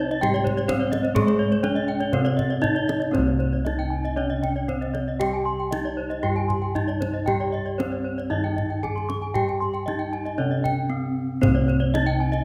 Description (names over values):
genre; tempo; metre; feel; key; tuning
Balinese gamelan; 116 BPM; 4/4; straight; C pelog; A4 = 441 Hz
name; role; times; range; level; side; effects
gamelan-type bronze metallophone; melody; 0.0-12.4 s; Ab3 to Ab4; -30 LUFS; equal; none
gamelan-type bronze metallophone; accompaniment; 0.0-12.4 s; C3 to Ab3; -37 LUFS; equal; none
gamelan-type bronze metallophone; arpeggios; 0.0-12.4 s; C5 to C6; -35 LUFS; equal; none
gamelan-type bossed gongs; bass; 0.0-12.4 s; C2 to Ab4; -28 LUFS; equal; none
gamelan-type bronze metallophone; arpeggios; 0.1-12.3 s; Ab4 to Db6+35c; -31 LUFS; equal; none
kendang; percussion; 0.1-12.4 s; none; -31 LUFS; equal; none
room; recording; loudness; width
moderate concert hall reverb, RT60 1.8 s; none; -24 LUFS; mono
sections
0.0-3.1 A section; 3.1-12.4 B section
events
none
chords
none